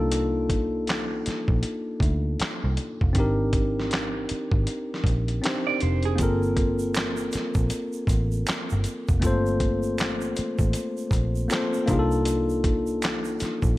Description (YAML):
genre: R&B, neo-soul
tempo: 79 BPM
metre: 4/4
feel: swing 62% on 16ths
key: G minor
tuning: A4 = 439 Hz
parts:
  - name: tine electric piano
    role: accompaniment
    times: 0.0-13.8 s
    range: A3 to C5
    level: -26 LUFS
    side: left 1 dB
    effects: none
  - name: vintage muted picked electric bass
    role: bass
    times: 0.0-13.8 s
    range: F1 to D2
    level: -26 LUFS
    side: equal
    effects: none
  - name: dusty soul sampler-style drum kit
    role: drums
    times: 0.1-13.8 s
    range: handclaps, hi-hat, kick drum, snare drum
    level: -26 LUFS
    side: equal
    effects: none
  - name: vintage hollow-body jazz guitar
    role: second line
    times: 5.7-6.4 s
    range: Ab4 to D5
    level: -30 LUFS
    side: right 11 dB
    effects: none
  - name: egg shaker and finger snaps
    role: percussion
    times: 6.2-13.8 s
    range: none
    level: -40 LUFS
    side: right 7 dB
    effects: none
room: little or no reverb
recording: none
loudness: -22 LUFS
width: side -17 dB against mid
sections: 0.0-13.8 A section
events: none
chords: 0.0 Cm11; 3.2 Abmaj7; 6.2 Gm11; 11.9 Cm11